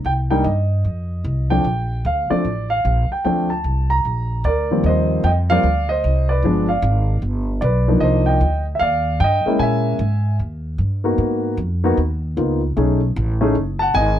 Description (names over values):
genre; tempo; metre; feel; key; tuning
jazz; 151 BPM; 4/4; swing 64% on 8ths; Bb major, Eb major from 4.8 s; A4 = 440 Hz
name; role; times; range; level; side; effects
upright bass; bass; 0.0-14.2 s; F#1 to Bb2; -19 LUFS; equal; none
warm concert grand piano; melody; 0.1-14.2 s; Eb2 to Bb5; -19 LUFS; equal; none
room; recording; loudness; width
light reverb; dark, warm production; -16 LUFS; side -11 dB against mid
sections
0.0-4.8 A section; 4.8-14.2 B section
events
none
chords
0.0 Cm; 0.8 F7(no3); 1.6 Bbmaj7; 4.0 Bb; 4.8 Eb69; 6.4 G7b9; 8.0 Cm11; 9.6 Bbm7b5; 10.4 Eb; 11.2 Abm9; 12.8 B13